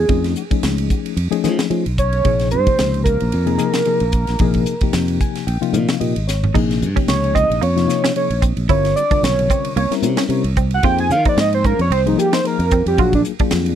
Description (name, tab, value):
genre	electric jazz fusion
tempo	112 BPM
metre	4/4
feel	swing 55% on 16ths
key	Bb dorian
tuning	A4 = 440 Hz
part	pulse-width lead	melody	0.0-13.2 s	D4 to Ab5	-20 LUFS	right 2 dB	chorus
part	mellow reed electric piano	accompaniment	0.0-13.8 s	C3 to Ab5	-21 LUFS	left 12 dB	medium tremolo
part	modern bright fingered electric bass	bass	0.0-13.8 s	G1 to F3	-19 LUFS	right 1 dB	none
part	crisp fusion drum kit	drums	0.1-13.8 s	crash cymbal, hi-hat, kick drum, ride cymbal, snare drum, toms	-21 LUFS	right 1 dB	none
part	semi-hollow electric guitar	stabs	6.5-13.6 s	Bb3 to F4	-25 LUFS	right 20 dB	wide subtle chorus
room	little or no reverb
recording	dry, close 1970s-style studio recording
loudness	-15 LUFS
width	side -10 dB against mid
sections	0.0-6.5 A section; 6.5-13.8 B section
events	reed electric piano fill 4.9-6.5; drum fill 6.3; analog synth lead solo 6.5-13.8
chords	0.1 F7alt; 2.3 Bbm9; 8.7 Gm7; 9.8 C7b9; 10.8 Fm7; 13.0 Bb7b13